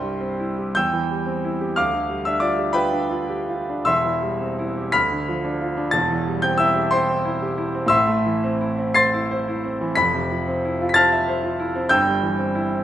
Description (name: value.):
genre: classical, romantic character piece for solo piano.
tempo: 52-62 BPM (dotted quarters).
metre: 6/8.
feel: rubato.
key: C major.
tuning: A4 = 440 Hz.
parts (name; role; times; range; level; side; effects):
bright concert grand piano; solo; 0.0-12.8 s; E1 to C7; -19 LUFS; equal; none.
room: moderate recital hall reverb, RT60 1.4 s.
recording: nothing above 11.0 kHz.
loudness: -19 LUFS.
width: side -11 dB against mid.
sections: 0.0-12.8 A section.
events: none.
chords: 0.0 C; 0.8 C/E; 1.8 G7/D; 3.9 C/E; 5.0 Bdim/D; 5.9 C/E; 7.9 Am; 10.0 Fmaj7; 11.9 C/G.